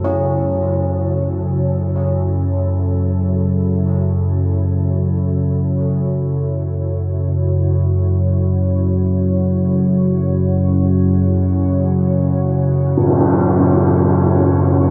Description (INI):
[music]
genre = dark ambient drone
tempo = free time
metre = none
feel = none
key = F# minor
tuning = A4 = 440 Hz
[part]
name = deep dark ambient pad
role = sustained chords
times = 0.0-14.9 s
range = F#3 to C#5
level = -28 LUFS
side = equal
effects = chorus, built-in reverb
[part]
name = old church bells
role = arpeggios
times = 0.0-7.7 s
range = B2 to C#4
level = -27 LUFS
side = equal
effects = diffuse ambient delay
[part]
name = analog drone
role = drone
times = 0.0-14.9 s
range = F#2 to C#3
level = -18 LUFS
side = equal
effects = chorus
[part]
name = tam-tam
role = percussion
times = 13.0-13.2 s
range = none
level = -18 LUFS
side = equal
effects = low-pass filter on cymbals
[sound]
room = moderate huge ambient reverb, RT60 8.1 s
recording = none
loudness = -17 LUFS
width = mono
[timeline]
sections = 0.0-14.9 A section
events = fade-in on ambient pad 0.0-14.9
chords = 0.0 F#7sus4